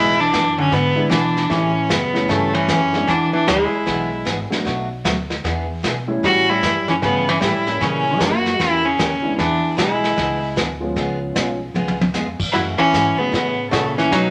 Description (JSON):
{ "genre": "country, western swing", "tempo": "152 BPM", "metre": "4/4", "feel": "swing 64% on 8ths", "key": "E mixolydian", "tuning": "A4 = 441 Hz", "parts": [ { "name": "clear fiddle", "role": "melody", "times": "0.0-14.3 s", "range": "A3 to F#4", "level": "-21 LUFS", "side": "equal", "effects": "none" }, { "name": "archtop guitar, miked and amplified", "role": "second line", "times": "0.0-14.3 s", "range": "C#3 to A#3", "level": "-24 LUFS", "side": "equal", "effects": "none" }, { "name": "picked steel-string acoustic guitar", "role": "accompaniment", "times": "0.0-14.3 s", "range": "B2 to A#4", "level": "-30 LUFS", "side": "equal", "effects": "none" }, { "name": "upright bass", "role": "bass", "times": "0.0-14.3 s", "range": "G#1 to B2", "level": "-31 LUFS", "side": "equal", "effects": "none" }, { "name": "vintage brush drum kit", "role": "drums", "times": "0.3-14.3 s", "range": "brushed snare drum, crash cymbal, hi-hat, kick drum, snare drum, toms", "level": "-26 LUFS", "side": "equal", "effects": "none" }, { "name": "dark upright piano", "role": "accompaniment", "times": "0.9-14.3 s", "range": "E3 to F#4", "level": "-28 LUFS", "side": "equal", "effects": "none" } ], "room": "moderate large studio reverb, RT60 1.0 s", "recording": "none", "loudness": "-19 LUFS", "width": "mono", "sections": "0.0-14.3 A section", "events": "drum fill 11.7-12.1", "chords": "0.0 E7; 1.5 A7; 3.1 E7; 4.7 Bm7; 5.4 E7; 6.2 A7; 7.8 A#dim7; 9.4 E7; 11.0 C#7; 12.5 F#m7", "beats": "0.32 0.72 1.11 | 1.50 1.90 2.29 2.68 | 3.08 3.47 3.86 4.26 | 4.65 5.04 5.44 5.83 | 6.23 6.62 7.01 7.41 | 7.80 8.20 8.59 8.98 | 9.38 9.77 10.17 10.56 | 10.96 11.35 11.75 12.14 | 12.54 12.93 13.33 13.72 | 14.12" }